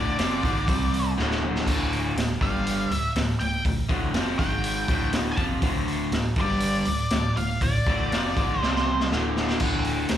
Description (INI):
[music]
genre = blues rock power trio and southern rock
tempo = 121 BPM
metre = 4/4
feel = straight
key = D minor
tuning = A4 = 440 Hz
[part]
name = octave-fuzz lead guitar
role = melody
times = 0.0-9.1 s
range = D5 to A5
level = -30 LUFS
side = left 1 dB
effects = wah, distortion, analog delay
[part]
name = overdriven electric guitar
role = riff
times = 0.0-10.2 s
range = D2 to C4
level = -26 LUFS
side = equal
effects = slapback echo
[part]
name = vintage muted fingered electric bass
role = bass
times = 0.0-10.2 s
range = D1 to C2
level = -30 LUFS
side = equal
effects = none
[part]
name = raw garage drum kit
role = drums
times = 0.2-10.2 s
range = crash cymbal, hi-hat, kick drum, snare drum, toms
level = -27 LUFS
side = equal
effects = none
[sound]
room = light reverb, small room ambience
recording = live gig heard through the venue's PA, club reverb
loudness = -22 LUFS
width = side -10 dB against mid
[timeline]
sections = 0.0-9.6 A section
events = drum fill 1.2-1.7, 8.6-9.6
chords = 0.0 Dm; 0.7 C5; 1.2 D5; 2.4 G5; 2.9 Dm; 4.4 G#5; 4.9 Dm; 6.4 G5; 6.9 Dm; 8.6 C5; 9.1 D5